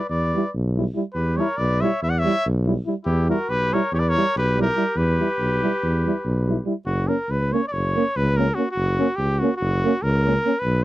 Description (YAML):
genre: balkan folk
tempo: 284 BPM (eighths)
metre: 9/8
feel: straight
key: unclear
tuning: A4 = 440 Hz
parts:
  - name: clear trumpet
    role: melody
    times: 0.0-10.8 s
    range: F#4 to F#5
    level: -24 LUFS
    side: equal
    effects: none
  - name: warm flugelhorn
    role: second line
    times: 0.0-6.7 s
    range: E4 to D5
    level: -31 LUFS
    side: left 2 dB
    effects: none
  - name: mellow tuba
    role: bass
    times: 0.1-10.8 s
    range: F#1 to E2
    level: -22 LUFS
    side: equal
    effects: none
  - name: mellow euphonium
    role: accompaniment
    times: 0.3-10.5 s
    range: G3 to A#3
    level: -24 LUFS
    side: right 6 dB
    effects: none
  - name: mellow trombone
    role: accompaniment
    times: 0.4-10.5 s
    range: C#4 to E4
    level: -26 LUFS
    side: left 5 dB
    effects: none
room: little or no reverb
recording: dry, close 1970s-style studio recording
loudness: -19 LUFS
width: side -16 dB against mid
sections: 0.0-6.9 A section; 6.9-10.8 A section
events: none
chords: 0.0 Em; 6.9 F#